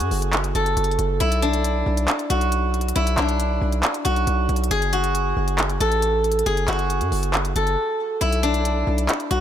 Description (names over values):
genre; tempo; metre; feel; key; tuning
hip hop, trap; 137 BPM; 4/4; half-time; B dorian; A4 = 440 Hz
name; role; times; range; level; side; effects
steel-string zither; melody; 0.0-9.4 s; D4 to A4; -22 LUFS; equal; none
distorted 808-style bass; bass; 0.0-9.4 s; F#1 to F#2; -22 LUFS; equal; distortion
trap drum kit; drums; 0.0-9.4 s; handclaps, hi-hat; -26 LUFS; equal; none
room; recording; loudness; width
digital ambience; none; -19 LUFS; side -10 dB against mid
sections
0.0-9.4 A section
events
break 7.8-8.2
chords
0.0 F#m; 1.2 Bm; 4.7 F#m; 8.2 Bm